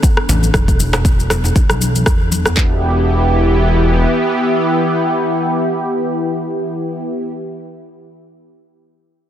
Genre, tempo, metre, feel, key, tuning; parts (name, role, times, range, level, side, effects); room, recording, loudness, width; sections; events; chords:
afro house; 118 BPM; 4/4; swing 55% on 16ths; E minor; A4 = 438 Hz
warm analog pad; sustained chords; 0.0-7.2 s; E3 to A4; -17 LUFS; equal; chorus, sidechain pumping
electronic shaker and rim click; drums; 0.0-2.6 s; -20 LUFS; equal
house drum kit; drums; 0.0-2.7 s; handclaps, kick drum; -14 LUFS; equal
congas; percussion; 0.0-2.5 s; -23 LUFS; left 3 dB
djembe; percussion; 0.0-2.5 s; -25 LUFS; right 2 dB
smooth synth bass; bass; 0.3-4.1 s; E1 to B1; -16 LUFS; equal; sidechain pumping
light reverb; dense, heavily limited modern master; -13 LUFS; side -10 dB against mid
0.0-2.6 A section; 2.6-6.6 B section
filter sweep on analog synth bass 0.0-2.6
0.0 E7(no3); 2.6 Em